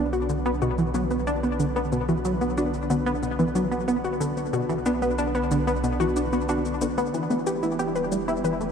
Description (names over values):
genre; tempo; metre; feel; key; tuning
ambient, sequencer-driven space music; 92 BPM; 4/4; straight; B minor; A4 = 441 Hz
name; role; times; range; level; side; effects
lush unison pad; sustained chords; 0.0-8.7 s; D3 to B4; -32 LUFS; right 2 dB; chorus
warbly dusty pluck; arpeggios; 0.0-8.6 s; B3 to B4; -28 LUFS; left 2 dB; chorus, auto-pan, ping-pong delay
tight sequenced synth; riff; 0.0-8.7 s; B2 to G4; -26 LUFS; equal; chorus, ping-pong delay
warm sub bass; bass; 0.0-8.7 s; E1 to B1; -33 LUFS; equal; tube saturation
cabasa and congas; percussion; 0.1-8.7 s; none; -42 LUFS; left 4 dB; ping-pong delay
room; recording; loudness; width
wet cathedral reverb, RT60 6.1 s; in a vast, echoing space; -22 LUFS; side -7 dB against mid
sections
0.0-8.7 A section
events
fade-in on analog synth pad 0.0-8.7; fade-in on drum 0.0-8.7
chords
0.0 Bmadd9; 7.1 Em